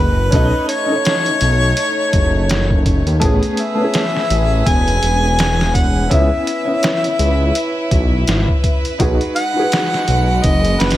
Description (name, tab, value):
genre	trip hop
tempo	83 BPM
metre	4/4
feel	swing 58% on 16ths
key	C# minor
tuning	A4 = 440 Hz
part	mellow harmonica	melody	0.0-11.0 s	B4 to G#5	-20 LUFS	left 1 dB	tape echo
part	felt-muted upright piano	accompaniment	0.0-11.0 s	A3 to E5	-22 LUFS	equal	tremolo, tape echo
part	warm studio violin section	sustained chords	0.0-11.0 s	G#3 to E5	-24 LUFS	equal	vintage 12-bit sampler grit
part	dark detuned saw bass	bass	0.0-11.0 s	E1 to D#2	-16 LUFS	equal	none
part	trip hop sampler-style drum kit	drums	0.3-11.0 s	hi-hat, kick drum, snare drum	-18 LUFS	equal	none
room	small room ambience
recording	none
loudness	-13 LUFS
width	side -14 dB against mid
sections	0.0-11.0 A section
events	none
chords	0.3 B9; 3.2 Amaj9; 6.1 C#m7; 9.0 G#m7/B